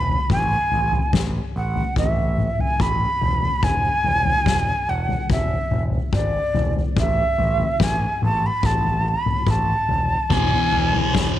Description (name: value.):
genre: psychedelic rock.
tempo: 72 BPM.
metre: 4/4.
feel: straight.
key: unclear.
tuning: A4 = 442 Hz.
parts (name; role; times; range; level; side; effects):
breathy mellow jazz flute; melody; 0.0-11.3 s; D5 to B5; -22 LUFS; right 1 dB; slapback echo.
growling picked electric bass; bass; 0.0-11.4 s; E1 to A1; -25 LUFS; right 1 dB; overdrive.
soft-mallet drum kit; drums; 0.1-11.3 s; kick drum, snare drum, toms; -22 LUFS; left 2 dB; none.
thick fuzz guitar; riff; 10.3-11.4 s; E2 to E3; -20 LUFS; left 1 dB; distortion, phaser.
room: light reverb, small room reverb.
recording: 1960s-style stereo.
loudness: -18 LUFS.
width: side -12 dB against mid.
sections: 0.0-11.4 A section.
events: none.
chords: 0.3 A5; 3.6 E; 7.0 A5; 10.3 E.